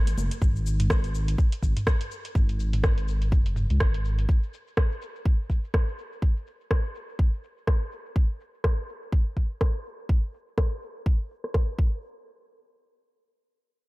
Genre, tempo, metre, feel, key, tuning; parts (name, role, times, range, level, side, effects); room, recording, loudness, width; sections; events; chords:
afro house; 124 BPM; 4/4; swing 58% on 16ths; A4 = 439 Hz
dark detuned saw bass; bass; 0.0-4.3 s; F#1 to C#2; -26 LUFS; equal; sidechain pumping
afro-pop drum kit; drums; 0.1-11.8 s; cabasa, hi-hat, rim click, toms; -31 LUFS; equal; overdrive, low-pass filter on snare, low-pass filter on hats, low-pass filter on perc, low-pass filter on toms, low-pass filter on cymbals
electronic kick drum; drums; 0.4-11.9 s; -23 LUFS; equal
digital ambience; -24 LUFS; side -22 dB against mid
0.0-12.0 A section; 12.0-13.9 B section
filter sweep on drum 0.0-12.0